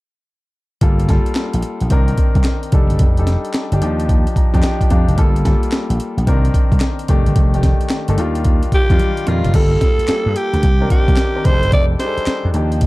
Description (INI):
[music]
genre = R&B, new jack swing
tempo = 110 BPM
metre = 4/4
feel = swing 65% on 16ths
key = G minor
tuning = A4 = 438 Hz
[part]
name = warm concert grand piano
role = accompaniment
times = 0.8-12.9 s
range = Eb3 to Bb5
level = -22 LUFS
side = left 2 dB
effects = none
[part]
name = vintage slap bass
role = bass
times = 0.8-12.9 s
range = F1 to G2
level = -17 LUFS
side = equal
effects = none
[part]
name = breakbeat sampler-style drum kit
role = drums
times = 0.8-12.9 s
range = crash cymbal, handclaps, hi-hat, kick drum, snare drum, toms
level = -15 LUFS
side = equal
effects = none
[part]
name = raspy alto saxophone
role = melody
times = 8.7-12.5 s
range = F4 to D5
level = -19 LUFS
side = right 1 dB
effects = none
[sound]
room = little or no reverb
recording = dark, warm production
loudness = -13 LUFS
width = side -20 dB against mid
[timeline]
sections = 0.8-9.5 A section; 9.5-12.9 B section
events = grand piano fill 4.1-5.2; drum fill 9.0-9.5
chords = 0.8 Gm9; 1.9 Cm9; 2.7 F13; 3.8 Ebmaj9; 5.2 Gm9; 6.3 Cm9; 7.1 F13; 8.2 Ebmaj9; 9.5 Gm9; 10.6 Cm9; 11.5 F13